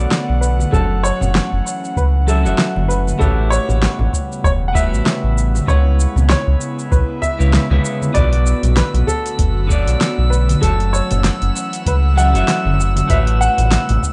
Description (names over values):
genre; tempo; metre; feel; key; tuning
sunset chillout; 97 BPM; 4/4; swing 57% on 16ths; B minor; A4 = 439 Hz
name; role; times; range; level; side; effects
warm grand piano; melody; 0.0-14.1 s; A4 to F#5; -25 LUFS; equal; delay
clean electric guitar; accompaniment; 0.0-14.1 s; C#3 to A5; -27 LUFS; equal; low-pass filter
airy breathy pad; sustained chords; 0.0-14.1 s; C#3 to F#5; -28 LUFS; equal; chorus
round analog bass; bass; 0.0-14.0 s; E1 to C#2; -18 LUFS; equal; none
deep house drum kit; drums; 0.1-14.1 s; cabasa, hi-hat, snare drum; -23 LUFS; equal; none
congas; percussion; 0.6-14.0 s; none; -27 LUFS; equal; none
electronic kick drum; drums; 0.7-14.1 s; none; -20 LUFS; equal; none
drifting glass-harmonics texture; texture; 8.5-14.1 s; E6; -29 LUFS; equal; chorus, built-in reverb
room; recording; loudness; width
moderate studio reverb, RT60 0.5 s; rough home demo mix, nothing above 10.5 kHz; -16 LUFS; mono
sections
0.0-14.1 A section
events
none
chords
0.0 Bm7; 0.7 F#m7; 3.2 A13; 5.7 C#m7; 8.2 Bm7; 10.6 F#m7; 13.1 A13